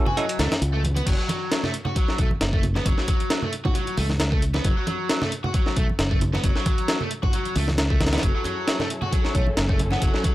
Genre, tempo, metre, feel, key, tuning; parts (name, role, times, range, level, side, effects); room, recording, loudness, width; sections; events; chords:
breakbeat, breaks; 134 BPM; 4/4; swing 54% on 16ths; A4 = 440 Hz
dark symphonic string section; sustained chords; 0.0-1.1, 8.2-10.3 s; F#3 to B4; -34 LUFS; left 1 dB; sidechain pumping
marimba with medium mallets; melody; 0.1-0.8, 9.4-10.3 s; C#5 to G#5; -31 LUFS; left 1 dB; telephone sound, vintage 12-bit sampler grit, tape echo
overdriven electric guitar; riff; 0.1-10.3 s; F#3 to F#4; -29 LUFS; equal; vintage 12-bit sampler grit, tape echo
congas; percussion; 0.1-10.3 s; -31 LUFS; right 2 dB
breakbeat sampler-style drum kit; drums; 0.2-10.3 s; crash cymbal, hi-hat, kick drum, snare drum; -23 LUFS; equal; small room ambience
fingered electric bass; bass; 0.4-10.1 s; F#1 to C#2; -24 LUFS; equal
little or no reverb; dry, gritty hardware recording, transformer saturation; -20 LUFS; side -16 dB against mid
0.0-1.1 A section; 1.1-10.3 B section
drop 0.0-1.1; kick drops out 0.2-1.1
0.0 F#m7